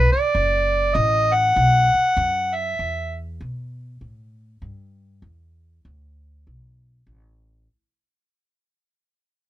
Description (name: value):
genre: acoustic country blues, solo or duo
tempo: 98 BPM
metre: 4/4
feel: swing 62% on 8ths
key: unclear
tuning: A4 = 440 Hz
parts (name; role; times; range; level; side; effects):
- overdriven harmonica; melody; 0.0-3.2 s; B4 to F#5; -18 LUFS; equal; none
- upright bass; bass; 0.0-7.7 s; F#1 to B2; -23 LUFS; equal; none
room: light reverb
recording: minimal, uncompressed stereo recording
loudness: -17 LUFS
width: side -14 dB against mid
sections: 0.0-7.7 A section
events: fade-out 0.0-7.7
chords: 0.0 B5; 2.8 E5; 4.0 Gsus2; 5.2 Dsus2; 6.5 Asus2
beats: | 0.35 0.96 1.57 2.18 | 2.79 3.40 4.01 4.62 | 5.23 5.84 6.45 7.06